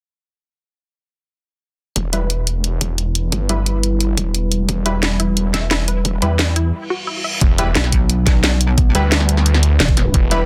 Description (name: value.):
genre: dark technical drum and bass.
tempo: 176 BPM.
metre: 4/4.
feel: straight.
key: E minor.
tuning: A4 = 439 Hz.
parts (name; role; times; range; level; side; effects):
deep dark ambient pad; sustained chords; 3.0-10.5 s; G3 to B4; -28 LUFS; equal; chorus, built-in reverb, sidechain pumping.
snarling distorted saw bass; bass; 2.0-10.5 s; E1 to E2; -20 LUFS; equal; distortion.
drum and bass drum kit; drums; 2.0-10.4 s; hi-hat, snare drum; -21 LUFS; equal; none.
electronic kick drum; drums; 2.0-10.2 s; none; -19 LUFS; equal; overdrive, high-pass filter on kick, high-pass filter on room.
orchestra-hit-like synth stab; stabs; 2.1-10.4 s; G3 to B4; -27 LUFS; equal; built-in reverb, dub echo.
unison pluck; arpeggios; 5.2-7.3 s; E4 to E5; -29 LUFS; equal; phaser, sidechain pumping, dub echo.
reverse cymbal and impact; sound effects; 6.8-8.8 s; none; -29 LUFS; equal; none.
pulsing pluck wobble bass; bass; 7.8-10.1 s; E1 to B1; -19 LUFS; equal; chorus.
room: digital ambience.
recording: dense, heavily limited modern master.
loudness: -17 LUFS.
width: mono.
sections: 2.0-7.4 A section; 7.4-10.5 B section.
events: filter sweep on synth stab 2.0-7.4; break 6.7-7.4; reverse cymbal 6.8-7.4; drop 7.4-10.5; impact 7.4-8.8.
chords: 2.0 Em.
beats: | 1.96 2.30 2.64 2.98 | 3.32 3.66 4.00 4.34 | 4.69 5.03 5.37 5.71 | 6.05 6.39 6.73 7.07 | 7.41 7.75 8.10 8.44 | 8.78 9.12 9.46 9.80 | 10.14.